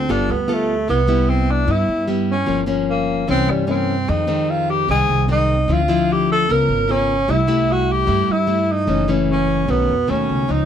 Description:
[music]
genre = bossa nova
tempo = 150 BPM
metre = 4/4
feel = straight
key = unclear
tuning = A4 = 437 Hz
[part]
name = breathy tenor saxophone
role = melody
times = 0.0-10.7 s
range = G3 to Bb4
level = -19 LUFS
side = equal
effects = none
[part]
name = nylon-string guitar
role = accompaniment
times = 0.0-10.7 s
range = F2 to Bb4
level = -20 LUFS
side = left 2 dB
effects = none
[part]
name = upright bass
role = bass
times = 0.0-10.7 s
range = Gb1 to G2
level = -22 LUFS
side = right 1 dB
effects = none
[sound]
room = light reverb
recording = close, detailed microphones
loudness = -16 LUFS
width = side -9 dB against mid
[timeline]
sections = 0.0-10.7 A section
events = none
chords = 0.1 G9; 0.9 Cmaj7; 2.5 Gm7b5; 3.3 C7b9; 4.1 Fm7; 5.7 Dm9; 6.5 Db6; 7.3 C6; 8.9 Gbm7; 9.7 B9

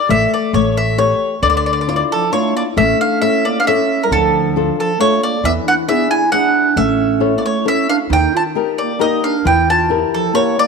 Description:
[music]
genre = italian folk, Italian serenade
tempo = 135 BPM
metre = 3/4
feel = straight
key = D harmonic minor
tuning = A4 = 440 Hz
[part]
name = bowl-back mandolin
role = melody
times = 0.0-10.7 s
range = A4 to A5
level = -16 LUFS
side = right 1 dB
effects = none
[part]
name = flamenco guitar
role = accompaniment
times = 0.1-10.7 s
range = D3 to C#5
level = -18 LUFS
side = left 12 dB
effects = none
[part]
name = upright bass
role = bass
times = 0.1-10.0 s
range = A1 to E2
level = -20 LUFS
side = right 2 dB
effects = none
[part]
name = mellow clarinet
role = second line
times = 2.1-10.7 s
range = F3 to F4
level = -20 LUFS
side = right 14 dB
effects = none
[sound]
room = moderate plate reverb, RT60 2.9 s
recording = 1960s-style stereo with parts hard left and right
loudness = -13 LUFS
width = side -5 dB against mid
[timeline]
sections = 0.0-10.7 A section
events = none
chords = 0.1 Asus4; 0.5 A7; 1.4 Dmadd9; 2.8 A; 4.1 Dm; 5.4 E7; 6.8 A; 8.1 Eb; 9.5 Edim

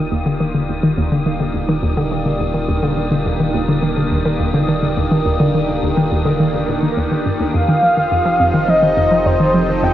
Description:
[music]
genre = ambient, sequencer-driven space music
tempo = 105 BPM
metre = 4/4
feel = straight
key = Eb major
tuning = A4 = 442 Hz
[part]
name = lush unison pad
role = sustained chords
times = 0.0-9.9 s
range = Eb3 to A4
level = -22 LUFS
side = equal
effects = chorus, phaser
[part]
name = hollow square pluck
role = riff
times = 0.0-9.9 s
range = Eb2 to F3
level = -17 LUFS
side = equal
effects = chorus, ping-pong delay
[part]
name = round analog bass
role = bass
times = 0.0-9.9 s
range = Eb1 to F1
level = -27 LUFS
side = equal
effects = none
[part]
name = wind-like tuned noise texture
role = texture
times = 0.0-9.9 s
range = Eb3 to Eb6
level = -24 LUFS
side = right 3 dB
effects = built-in reverb
[part]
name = breathy flute-like synth lead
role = melody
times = 7.5-9.9 s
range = C5 to G5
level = -14 LUFS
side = equal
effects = analog chorus, cassette tape, ping-pong delay
[sound]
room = wet spring reverb, RT60 2.8 s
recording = home recording on cassette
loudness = -14 LUFS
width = side -12 dB against mid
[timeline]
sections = 0.0-9.9 A section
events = fade-in on analog synth pad 0.0-9.9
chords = 0.0 Ebmaj7; 7.5 F7

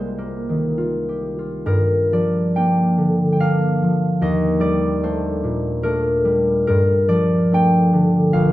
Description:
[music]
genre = classical, solo harp piece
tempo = 66-76 BPM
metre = 3/4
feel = rubato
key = G minor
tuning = A4 = 443 Hz
[part]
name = concert harp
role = solo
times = 0.0-8.5 s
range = Bb1 to G5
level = -16 LUFS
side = equal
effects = none
[sound]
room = moderate stone room reverb, RT60 1.2 s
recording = none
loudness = -16 LUFS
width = side -16 dB against mid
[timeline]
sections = 0.0-1.7 A section; 1.7-8.5 B section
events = none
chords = 0.0 Cm11; 1.7 Gm7; 4.2 Ebmaj7#11; 6.6 Gm9

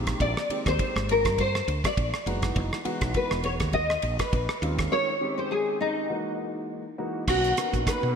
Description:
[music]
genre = electric jazz fusion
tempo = 102 BPM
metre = 4/4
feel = swing 55% on 16ths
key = unclear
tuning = A4 = 438 Hz
[part]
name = dark concert grand piano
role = accompaniment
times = 0.0-8.2 s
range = Eb3 to G4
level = -33 LUFS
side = equal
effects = analog chorus
[part]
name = woody fretless electric bass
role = bass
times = 0.0-8.1 s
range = Fb1 to B2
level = -29 LUFS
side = right 1 dB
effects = none
[part]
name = damped 70s drum kit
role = drums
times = 0.1-8.0 s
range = crash cymbal, hi-hat, kick drum, ride cymbal, rim click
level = -29 LUFS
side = right 1 dB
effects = gated reverb
[part]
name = nylon-string guitar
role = melody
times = 0.2-8.2 s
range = Eb4 to Eb5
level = -27 LUFS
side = left 2 dB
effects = ensemble chorus
[sound]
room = moderate lush hall reverb, RT60 2.0 s, small room ambience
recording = bright 1980s-style digital production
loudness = -24 LUFS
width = side -6 dB against mid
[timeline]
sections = 0.0-7.3 A section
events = none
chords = 0.0 Bb13sus4; 2.3 Gb13sus4; 4.6 Eb13sus4; 6.1 Gb13; 7.3 Bmaj9

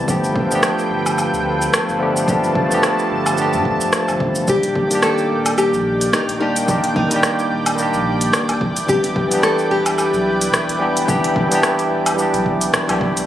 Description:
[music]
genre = sunset chillout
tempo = 109 BPM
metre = 4/4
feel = swing 57% on 16ths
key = unclear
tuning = A4 = 440 Hz
[part]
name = barky tine electric piano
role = accompaniment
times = 0.0-13.3 s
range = Eb3 to D5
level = -19 LUFS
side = equal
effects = auto-pan, tape echo
[part]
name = lush unison pad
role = sustained chords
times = 0.0-13.3 s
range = Eb3 to A5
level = -23 LUFS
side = equal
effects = chorus
[part]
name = warm sub bass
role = bass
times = 0.0-13.3 s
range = Eb1 to G2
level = -29 LUFS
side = equal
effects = none
[part]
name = electronic kick drum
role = drums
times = 0.1-13.1 s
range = none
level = -22 LUFS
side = right 1 dB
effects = studio reverb
[part]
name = smooth R&B drum kit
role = drums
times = 0.1-13.3 s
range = hi-hat, rim click, shaker, woodblock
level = -21 LUFS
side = equal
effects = studio reverb
[part]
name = nylon-string guitar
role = melody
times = 4.5-12.7 s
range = Eb4 to A4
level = -20 LUFS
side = left 2 dB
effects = digital delay
[sound]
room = moderate lush hall reverb, RT60 2.5 s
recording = recorded on a phone in the room, club reverb, compression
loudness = -15 LUFS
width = side -12 dB against mid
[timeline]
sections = 0.0-13.3 A section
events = band accent 12.7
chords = 0.1 G9; 4.5 Ebmaj7; 8.6 Em7

